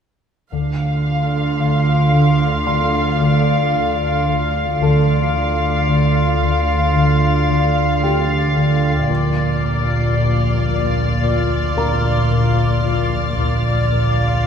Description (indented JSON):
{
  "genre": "cinematic, suspense film score",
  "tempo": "56 BPM",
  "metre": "4/4",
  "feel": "straight",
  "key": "D minor",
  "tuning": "A4 = 440 Hz",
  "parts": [
    { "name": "muted symphonic violin section", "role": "melody", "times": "0.5-14.5 s", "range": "D5 to F5", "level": "-23 LUFS", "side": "left 1 dB", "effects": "none" },
    { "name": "drifting glass-harmonics texture", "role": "sustained chords", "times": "1.0-14.5 s", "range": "F4 to F5", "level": "-22 LUFS", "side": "left 2 dB", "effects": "chorus, built-in reverb" },
    { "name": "concert harp", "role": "riff", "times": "0.5-14.5 s", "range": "Bb2 to D4", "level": "-21 LUFS", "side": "equal", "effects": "none" },
    { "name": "muted symphonic cello section", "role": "bass", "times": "0.5-14.5 s", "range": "Bb2 to D3", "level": "-22 LUFS", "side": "right 3 dB", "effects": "none" },
    { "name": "muted symphonic double bass section", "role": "bass", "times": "0.5-14.5 s", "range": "Bb1 to D2", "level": "-23 LUFS", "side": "right 1 dB", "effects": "none" },
    { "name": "sub bass with octave", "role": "drone", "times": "0.5-14.5 s", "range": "D2", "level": "-23 LUFS", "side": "equal", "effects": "none" },
    { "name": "dark grand piano", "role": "texture", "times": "2.7-14.5 s", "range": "G4 to C6", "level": "-29 LUFS", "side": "equal", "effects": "none" },
    { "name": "muted symphonic violin section", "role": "texture", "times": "9.1-14.5 s", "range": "D6 to A6", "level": "-30 LUFS", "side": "left 5 dB", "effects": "none" }
  ],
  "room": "wet scoring stage reverb, RT60 1.5 s",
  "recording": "minimal, uncompressed stereo recording",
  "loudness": "-14 LUFS",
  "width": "side -7 dB against mid",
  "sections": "0.5-14.5 A section",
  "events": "none",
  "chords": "0.5 Dm; 9.1 Bb"
}